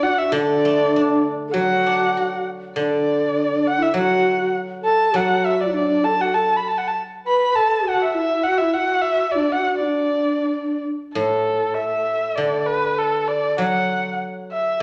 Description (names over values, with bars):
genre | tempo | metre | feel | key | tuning
chinese traditional, Chinese chamber ensemble | 99 BPM | 2/4 | straight | D gong mode | A4 = 439 Hz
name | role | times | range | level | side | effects
dark erhu | melody | 0.0-14.8 s | A4 to B5 | -23 LUFS | equal | none
breathy mellow low xiao | second line | 0.0-10.9 s | D4 to B4 | -24 LUFS | equal | none
guzheng | accompaniment | 0.3-7.0, 11.2-14.8 s | A2 to F#4 | -26 LUFS | equal | none
room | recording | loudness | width
wet recital hall reverb, RT60 1.3 s | none | -20 LUFS | mono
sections
0.0-1.6 A section; 1.6-11.2 B section; 11.2-14.8 C section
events
none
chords
none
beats
| 0.35 0.95 | 1.56 2.17 | 2.77 3.36 | 3.95 4.54 | 5.14 5.74 | 6.35 6.96 | 7.56 8.16 | 8.75 9.35 | 9.94 10.55 | 11.16 11.78 | 12.40 13.01 | 13.61 14.22